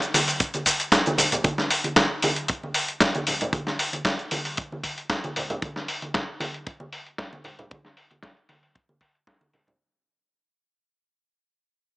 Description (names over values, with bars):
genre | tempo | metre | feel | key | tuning
nu-disco | 115 BPM | 4/4 | swing 53% on 16ths | none | none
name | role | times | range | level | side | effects
dusty soul sampler-style drum kit | drums | 0.0-9.8 s | hi-hat, shaker, snare drum | -23 LUFS | equal | overdrive, low-pass filter on hats, low-pass filter on perc, low-pass filter on snare, low-pass filter on room
congas | percussion | 0.1-9.8 s | none | -31 LUFS | right 1 dB | none
kick drum | drums | 0.4-9.4 s | none | -28 LUFS | equal | none
room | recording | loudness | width
light reverb, small room ambience | small speaker sound | -22 LUFS | side -22 dB against mid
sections
0.0-1.4 A section; 1.4-9.8 B section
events
drop 0.0-1.4; fade-out 1.4-9.8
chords
none